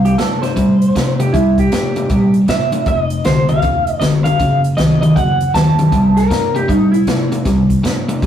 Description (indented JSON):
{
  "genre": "electric blues shuffle",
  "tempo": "157 BPM",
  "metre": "4/4",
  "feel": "swing 64% on 8ths",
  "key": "unclear",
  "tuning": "A4 = 440 Hz",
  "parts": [
    { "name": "electric guitar through a small old amp", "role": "melody", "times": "0.0-0.2, 2.5-6.3 s", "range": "C5 to A5", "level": "-18 LUFS", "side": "right 1 dB", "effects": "tremolo" },
    { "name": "overdriven semi-hollow guitar", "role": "riff", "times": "0.0-8.3 s", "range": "F2 to A3", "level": "-14 LUFS", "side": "equal", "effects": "spring reverb" },
    { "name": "upright bass", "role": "bass", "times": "0.0-8.3 s", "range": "F1 to C3", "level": "-22 LUFS", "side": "left 1 dB", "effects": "none" },
    { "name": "electric slide guitar", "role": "second line", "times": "0.1-2.3, 6.2-7.3 s", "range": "Eb4 to C5", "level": "-19 LUFS", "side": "equal", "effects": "none" },
    { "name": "swinging big-band drum kit", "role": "drums", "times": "0.1-8.3 s", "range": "hi-hat, kick drum, snare drum", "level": "-21 LUFS", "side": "equal", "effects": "none" }
  ],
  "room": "wet studio reverb, RT60 0.6 s",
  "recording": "rough rehearsal-room recording, warm saturation",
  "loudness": "-12 LUFS",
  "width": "side -10 dB against mid",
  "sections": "0.0-8.3 A section",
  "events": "none",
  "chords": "0.0 C6; 2.9 Fsus2; 4.4 F#dim7; 5.9 C5"
}